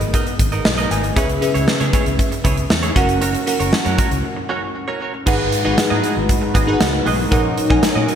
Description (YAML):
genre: 1980s-style pop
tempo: 117 BPM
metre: 4/4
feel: straight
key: unclear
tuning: A4 = 438 Hz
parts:
  - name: glassy digital keys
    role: accompaniment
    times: 0.0-8.2 s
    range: G#2 to G#5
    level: -20 LUFS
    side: left 1 dB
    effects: chorus
  - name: direct-recorded clean electric guitar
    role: riff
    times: 0.0-8.2 s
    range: B3 to D#5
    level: -24 LUFS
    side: right 4 dB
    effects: lush chorus, ping-pong delay
  - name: vintage muted fingered electric bass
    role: bass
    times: 0.0-8.1 s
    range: F#1 to C#3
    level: -23 LUFS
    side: equal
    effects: none
  - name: huge arena drum kit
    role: drums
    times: 0.0-8.2 s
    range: crash cymbal, hi-hat, kick drum, snare drum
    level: -18 LUFS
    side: equal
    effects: gated reverb
  - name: sweeping resonant pad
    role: sustained chords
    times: 5.3-8.2 s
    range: F#3 to A#5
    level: -24 LUFS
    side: left 2 dB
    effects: chorus
room: moderate lush hall reverb, RT60 1.7 s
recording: bright 1980s-style digital production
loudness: -15 LUFS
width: side -8 dB against mid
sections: 0.0-5.3 A section; 5.3-8.2 B section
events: synth keys fill 0.4-1.2; break 4.2-5.3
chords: 0.0 G#madd9; 1.2 C#m7; 3.0 F#; 5.3 G#m7; 7.3 D#m7/A#